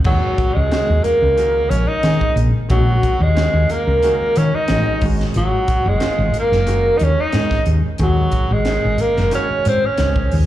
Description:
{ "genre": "electric jazz fusion", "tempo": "91 BPM", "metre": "4/4", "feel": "straight", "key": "Eb minor", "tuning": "A4 = 441 Hz", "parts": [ { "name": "bright baby grand piano", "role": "accompaniment", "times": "0.0-10.5 s", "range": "Eb3 to Ab4", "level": "-27 LUFS", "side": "equal", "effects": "slapback echo" }, { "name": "woody fretless electric bass", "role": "bass", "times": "0.0-10.5 s", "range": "Gb1 to Eb3", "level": "-17 LUFS", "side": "equal", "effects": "none" }, { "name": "crisp fusion drum kit", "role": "drums", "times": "0.0-10.5 s", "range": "crash cymbal, hi-hat, kick drum, snare drum", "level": "-23 LUFS", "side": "equal", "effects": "none" }, { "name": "clear tenor saxophone", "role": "melody", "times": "0.1-10.3 s", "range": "Gb3 to Eb4", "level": "-18 LUFS", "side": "equal", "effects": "slapback echo" }, { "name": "mellow hollow silver concert flute", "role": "second line", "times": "0.1-10.3 s", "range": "Gb4 to Eb5", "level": "-26 LUFS", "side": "right 1 dB", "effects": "none" } ], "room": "studio reverb", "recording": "live gig heard through the venue's PA, club reverb", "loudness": "-14 LUFS", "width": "side -13 dB against mid", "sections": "0.1-10.5 A section", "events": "none", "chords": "0.1 Ebm7; 5.0 Ab9sus4", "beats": "| 0.06 0.72 1.38 2.04 | 2.71 3.37 4.03 4.69 | 5.35 6.02 6.68 7.34 | 8.00 8.67 9.33 9.99" }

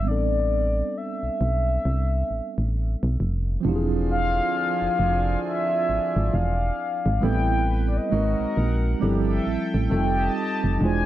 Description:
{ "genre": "R&B", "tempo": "67 BPM", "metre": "4/4", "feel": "swing 61% on 16ths", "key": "A minor", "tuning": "A4 = 443 Hz", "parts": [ { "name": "mellow horn-like synth lead", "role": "melody", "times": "0.0-11.1 s", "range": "D5 to A5", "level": "-26 LUFS", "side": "left 2 dB", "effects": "chorus" }, { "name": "mellow tine electric piano", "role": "accompaniment", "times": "0.0-11.1 s", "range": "F3 to C5", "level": "-28 LUFS", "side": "right 2 dB", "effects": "medium stereo tremolo" }, { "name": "solid FM bass", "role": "bass", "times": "0.0-11.1 s", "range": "E1 to C2", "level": "-23 LUFS", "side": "equal", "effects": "none" }, { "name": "chorused pulse-width pad", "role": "sustained chords", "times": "3.6-11.1 s", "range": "F3 to A5", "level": "-34 LUFS", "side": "equal", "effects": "none" }, { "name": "mellow horn section", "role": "stabs", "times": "3.6-11.1 s", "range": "C3 to A4", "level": "-33 LUFS", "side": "right 8 dB", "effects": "none" } ], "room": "light reverb", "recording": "dark, warm production", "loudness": "-21 LUFS", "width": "side -13 dB against mid", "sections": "0.0-3.6 A section; 3.6-11.1 B section", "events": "none", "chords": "0.1 Am11; 3.6 E7b9b13; 7.2 Am9; 8.1 G#9; 9.0 G13sus4; 9.9 F9", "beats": "| 0.05 0.95 1.84 2.74 | 3.63 4.53 5.42 6.32 | 7.22 8.11 9.01 9.90 | 10.80" }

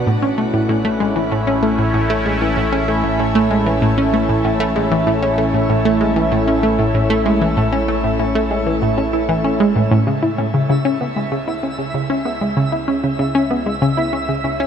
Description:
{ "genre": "ambient, sequencer-driven space music", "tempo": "96 BPM", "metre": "4/4", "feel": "straight", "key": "unclear", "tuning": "A4 = 440 Hz", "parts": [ { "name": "sweeping resonant pad", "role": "sustained chords", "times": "0.0-14.7 s", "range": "G#3 to E4", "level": "-20 LUFS", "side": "left 1 dB", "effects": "chorus" }, { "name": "fat analog bass", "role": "bass", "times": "0.0-14.7 s", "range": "A1 to C#2", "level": "-26 LUFS", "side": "equal", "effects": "none" }, { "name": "analog pluck", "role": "riff", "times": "0.1-14.7 s", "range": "A2 to E4", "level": "-17 LUFS", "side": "equal", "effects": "chorus, phaser, analog delay" }, { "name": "twinkling granular texture", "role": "texture", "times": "10.6-14.7 s", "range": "E5", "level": "-26 LUFS", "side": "right 2 dB", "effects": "built-in reverb" } ], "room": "wet shimmer reverb, RT60 7.9 s", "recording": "none", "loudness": "-15 LUFS", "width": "side -8 dB against mid", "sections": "0.0-10.1 A section; 10.1-14.7 B section", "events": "fade-in on analog synth pad 10.1-14.7; fade-in on analog synth bass 10.1-14.7", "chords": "0.1 A; 10.1 C#m", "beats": "| 0.07 0.69 1.32 1.94 | 2.57 3.19 3.82 4.44 | 5.07 5.69 6.32 6.94 | 7.57 8.19 8.82 9.44 | 10.07 10.69 11.32 11.94 | 12.57 13.19 13.82 14.44" }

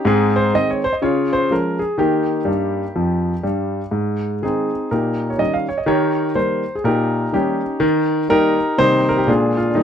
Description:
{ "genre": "jazz, stride piano", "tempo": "124 BPM", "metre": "4/4", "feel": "swing 61% on 8ths", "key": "unclear", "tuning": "A4 = 441 Hz", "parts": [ { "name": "warm concert grand piano", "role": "solo", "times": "0.0-9.8 s", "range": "F2 to F5", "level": "-16 LUFS", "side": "equal", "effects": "none" } ], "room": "light reverb", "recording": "none", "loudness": "-16 LUFS", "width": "side -8 dB against mid", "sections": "0.0-9.8 A section", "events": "grand piano fill 2.5-3.9", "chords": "0.1 Ab; 1.0 Db; 2.0 Eb; 3.9 Ab; 4.9 Eb7/Bb; 7.8 Eb; 8.8 Cm7; 9.3 Bb7", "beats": "| 0.05 0.54 1.02 1.51 | 1.99 2.48 2.97 3.45 | 3.94 4.42 4.91 5.40 | 5.88 6.37 6.85 7.34 | 7.82 8.31 8.79 9.28 | 9.76" }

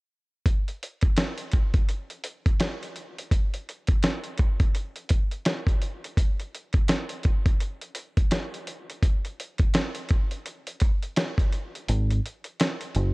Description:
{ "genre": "hip hop, boom-bap hip-hop", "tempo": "84 BPM", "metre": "4/4", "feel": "swing 60% on 16ths", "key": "unclear", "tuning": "A4 = 441 Hz", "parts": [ { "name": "dusty soul sampler-style drum kit", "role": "drums", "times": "0.5-13.1 s", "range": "hi-hat, kick drum, snare drum", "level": "-23 LUFS", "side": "equal", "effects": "none" }, { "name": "deep dub fingered electric bass", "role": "bass", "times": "11.9-13.1 s", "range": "F#1 to G#1", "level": "-22 LUFS", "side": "equal", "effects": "none" } ], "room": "little or no reverb", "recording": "worn, warbling old tape, cassette tape, warbly pitch drift", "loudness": "-24 LUFS", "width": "side -27 dB against mid", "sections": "0.5-11.9 A section; 11.9-13.1 B section", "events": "kick muted 11.9-13.1", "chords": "none", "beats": "| 0.45 1.17 1.88 2.60 | 3.31 4.03 4.74 5.45 | 6.17 6.88 7.60 8.31 | 9.03 9.74 10.45 11.17 | 11.88 12.60" }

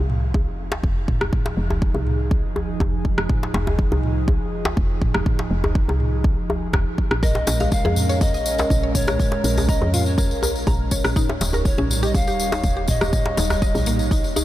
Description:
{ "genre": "afro house", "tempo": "122 BPM", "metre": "4/4", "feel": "straight", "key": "F minor", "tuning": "A4 = 440 Hz", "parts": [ { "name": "warm analog pad", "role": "sustained chords", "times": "0.0-14.4 s", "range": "F3 to Db5", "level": "-29 LUFS", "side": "right 1 dB", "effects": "chorus, sidechain pumping" }, { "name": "woody FM bass", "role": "bass", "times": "0.0-14.4 s", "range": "Eb1 to F2", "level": "-24 LUFS", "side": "equal", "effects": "sidechain pumping" }, { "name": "afro-pop drum kit", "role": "drums", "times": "0.1-14.0 s", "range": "rim click, toms", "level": "-28 LUFS", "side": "equal", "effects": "none" }, { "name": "electronic kick drum", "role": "drums", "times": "0.3-14.2 s", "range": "none", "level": "-21 LUFS", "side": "equal", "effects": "none" }, { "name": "djembe", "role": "percussion", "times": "0.3-14.4 s", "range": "none", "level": "-28 LUFS", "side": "left 1 dB", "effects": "none" }, { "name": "mellow hollow polished pan flute", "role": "melody", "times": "7.2-14.4 s", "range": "Db5 to F5", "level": "-27 LUFS", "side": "equal", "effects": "analog delay" }, { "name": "mallet-like synth pluck", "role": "arpeggios", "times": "7.2-14.4 s", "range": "Bb3 to Bb5", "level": "-29 LUFS", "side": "equal", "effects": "chorus, sidechain pumping, analog delay" }, { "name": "tambourine", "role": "percussion", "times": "7.2-14.4 s", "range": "none", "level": "-30 LUFS", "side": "left 4 dB", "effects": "none" } ], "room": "light reverb, small room ambience", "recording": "none", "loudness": "-18 LUFS", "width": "side -14 dB against mid", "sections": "0.0-14.4 A section", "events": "none", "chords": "0.0 Fm7; 7.2 Bbm7; 11.2 Eb7", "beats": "0.34 0.84 | 1.33 1.82 2.31 2.80 | 3.30 3.79 4.28 4.77 | 5.26 5.75 6.25 6.74 | 7.23 7.72 8.21 8.71 | 9.20 9.69 10.18 10.67 | 11.16 11.66 12.15 12.64 | 13.13 13.62 14.12" }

